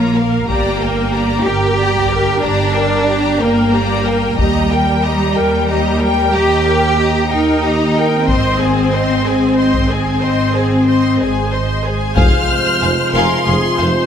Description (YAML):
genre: cinematic, epic orchestral film score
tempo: 62 BPM (dotted quarters)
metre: 6/8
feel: straight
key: unclear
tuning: A4 = 441 Hz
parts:
  - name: rich symphonic violin section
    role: melody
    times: 0.0-14.1 s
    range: F5 to F6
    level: -22 LUFS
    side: left 2 dB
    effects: none
  - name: rich symphonic violin section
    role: second line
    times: 0.0-13.9 s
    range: Ab4 to G5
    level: -22 LUFS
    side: left 2 dB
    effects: none
  - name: rich symphonic viola section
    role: accompaniment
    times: 0.0-14.1 s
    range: F4 to C5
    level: -20 LUFS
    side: equal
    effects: none
  - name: rich studio cello section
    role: bass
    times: 0.0-13.9 s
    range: F2 to G4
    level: -16 LUFS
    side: equal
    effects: none
  - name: rich symphonic double bass section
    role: bass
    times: 0.0-13.9 s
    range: F1 to Eb2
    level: -19 LUFS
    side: right 2 dB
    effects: none
  - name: taiko ensemble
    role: drums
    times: 0.5-12.8 s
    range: none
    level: -19 LUFS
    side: left 1 dB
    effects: none
  - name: bright trombone section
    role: sustained chords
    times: 12.2-14.1 s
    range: C3 to F3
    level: -23 LUFS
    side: right 2 dB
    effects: none
  - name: mellow French horn section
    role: sustained chords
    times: 12.2-14.1 s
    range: Ab3 to F4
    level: -22 LUFS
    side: equal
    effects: none
  - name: mellow tuba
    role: bass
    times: 12.2-13.9 s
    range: F1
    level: -23 LUFS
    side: right 3 dB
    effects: none
room: moderate scoring stage reverb, RT60 1.7 s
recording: none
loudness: -12 LUFS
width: side -8 dB against mid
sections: 0.0-12.2 A section; 12.2-14.1 B section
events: none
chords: 0.5 Gm; 4.4 Eb; 8.3 Ab; 12.2 Fm